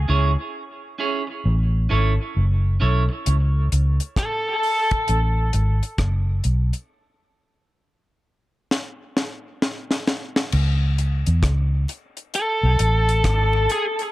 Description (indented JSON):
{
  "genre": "dub reggae",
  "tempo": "66 BPM",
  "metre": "4/4",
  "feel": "swing 63% on 16ths",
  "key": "unclear",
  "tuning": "A4 = 441 Hz",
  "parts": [
    { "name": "vintage muted fingered electric bass", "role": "bass", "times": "0.0-13.7 s", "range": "F#1 to E2", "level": "-18 LUFS", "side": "equal", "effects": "none" },
    { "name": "clean electric guitar", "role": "accompaniment", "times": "0.1-3.1 s", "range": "C#4 to C#5", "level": "-26 LUFS", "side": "right 4 dB", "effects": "tape echo" },
    { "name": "deep reggae drum kit", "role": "drums", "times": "3.3-14.1 s", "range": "crash cymbal, hi-hat, kick drum, rim click, snare drum", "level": "-24 LUFS", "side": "left 1 dB", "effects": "none" },
    { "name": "biting lead guitar", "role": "melody", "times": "4.2-4.9, 12.4-13.8 s", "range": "G#4 to A4", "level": "-22 LUFS", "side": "equal", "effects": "overdrive, tape echo" },
    { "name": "bongos", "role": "percussion", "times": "10.5-14.0 s", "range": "none", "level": "-44 LUFS", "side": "equal", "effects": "none" }
  ],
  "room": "small room ambience",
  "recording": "echo-heavy mix",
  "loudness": "-19 LUFS",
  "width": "side -17 dB against mid",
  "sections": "0.0-10.5 A section; 10.5-14.1 B section",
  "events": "break 0.0-10.5; drum fill 8.7-10.5",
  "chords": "0.0 C#m; 1.4 A; 3.3 A/C#; 5.1 F#madd9; 6.9 N.C.; 12.3 G#m"
}